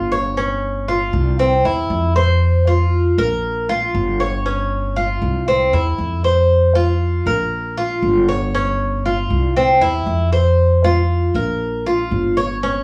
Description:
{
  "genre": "latin, Cuban son and guajira",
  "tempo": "118 BPM",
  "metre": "4/4",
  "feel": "straight",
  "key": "unclear",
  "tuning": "A4 = 438 Hz",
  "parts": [
    { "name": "Cuban tres", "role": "arpeggios", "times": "0.0-12.8 s", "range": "C4 to Db5", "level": "-20 LUFS", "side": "equal", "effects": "none" },
    { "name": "upright bass", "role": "bass", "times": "0.0-12.8 s", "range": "G1 to F2", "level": "-21 LUFS", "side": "equal", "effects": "none" }
  ],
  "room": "moderate studio reverb, RT60 0.6 s",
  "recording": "heard from further back in the room, studio ambience",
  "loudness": "-17 LUFS",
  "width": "mono",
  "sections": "0.0-12.8 A section",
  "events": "none",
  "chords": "0.4 Dbmaj7#11/G; 1.4 C; 2.4 F5; 3.4 Bbm; 4.5 Dbmaj7#11/G; 5.5 C; 6.5 F5; 7.5 Bbm; 8.5 Dbmaj7#11/G; 9.6 C; 10.6 F5; 11.6 Bbm"
}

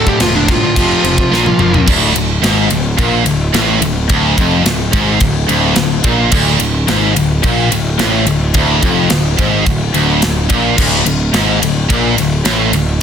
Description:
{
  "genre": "heavy metal",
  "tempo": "108 BPM",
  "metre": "4/4",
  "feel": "straight",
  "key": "D minor",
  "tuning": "A4 = 441 Hz",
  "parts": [
    { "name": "high-gain lead guitar", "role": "melody", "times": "0.0-1.8 s", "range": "D4 to G4", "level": "-17 LUFS", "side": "equal", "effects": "distortion, ping-pong delay" },
    { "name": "crunchy overdriven guitar", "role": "riff", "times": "0.0-13.0 s", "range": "D2 to Bb3", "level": "-19 LUFS", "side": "equal", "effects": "none" },
    { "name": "distorted electric guitar", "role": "riff", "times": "0.0-13.0 s", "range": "D2 to Bb3", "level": "-18 LUFS", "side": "left 8 dB", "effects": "distortion" },
    { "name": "scooped high-gain guitar", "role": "riff", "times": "0.0-13.0 s", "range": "D2 to Bb3", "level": "-17 LUFS", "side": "right 11 dB", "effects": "distortion" },
    { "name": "fuzz picked electric bass", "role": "bass", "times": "0.0-13.0 s", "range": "D1 to Bb1", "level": "-17 LUFS", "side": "equal", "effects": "overdrive" },
    { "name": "tight metal drum kit", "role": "drums", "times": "0.1-12.9 s", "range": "crash cymbal, kick drum, ride cymbal, snare drum, toms", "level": "-16 LUFS", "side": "equal", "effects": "none" }
  ],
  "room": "small room ambience",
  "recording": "dense, heavily limited modern master",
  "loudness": "-10 LUFS",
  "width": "side -8 dB against mid",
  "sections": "0.0-1.9 A section; 1.9-13.0 B section",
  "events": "lead electric guitar solo 0.0-1.9; drum fill 1.3-1.9",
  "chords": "0.0 D5; 0.8 F5; 1.3 Bb5; 1.9 Dm"
}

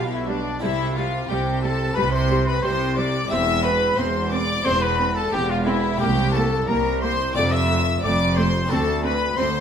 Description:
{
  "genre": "classical, baroque-style concerto movement with solo episodes",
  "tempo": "89 BPM",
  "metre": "4/4",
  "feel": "straight",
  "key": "C major",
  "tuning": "A4 = 440 Hz",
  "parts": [
    { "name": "warm studio violin section", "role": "melody", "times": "0.0-9.6 s", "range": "D5 to E6", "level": "-28 LUFS", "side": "left 3 dB", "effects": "none" },
    { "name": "warm trumpet", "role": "melody", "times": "0.0-9.6 s", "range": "D4 to E5", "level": "-27 LUFS", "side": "left 1 dB", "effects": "none" },
    { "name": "rich chamber violin section", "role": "second line", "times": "0.0-9.6 s", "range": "D4 to E5", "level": "-26 LUFS", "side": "left 3 dB", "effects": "none" },
    { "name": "bright symphonic viola section", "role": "accompaniment", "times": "0.0-9.5 s", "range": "G3 to C4", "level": "-30 LUFS", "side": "right 2 dB", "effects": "none" },
    { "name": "harpsichord", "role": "accompaniment", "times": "0.0-9.6 s", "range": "C2 to F#4", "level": "-31 LUFS", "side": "left 2 dB", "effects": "none" },
    { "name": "bright studio double bass section", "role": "bass", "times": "0.0-9.6 s", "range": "E1 to D2", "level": "-26 LUFS", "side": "right 2 dB", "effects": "none" },
    { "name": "rich chamber cello section", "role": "bass", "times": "0.0-9.6 s", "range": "C2 to C3", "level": "-26 LUFS", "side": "right 2 dB", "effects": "none" }
  ],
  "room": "moderate recital hall reverb, RT60 1.4 s",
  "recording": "none",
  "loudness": "-19 LUFS",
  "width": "side -8 dB against mid",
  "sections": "0.0-9.6 A section",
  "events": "none",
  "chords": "0.0 G7/B; 0.6 C; 3.3 C/E; 6.0 C7; 7.4 F; 8.7 D7"
}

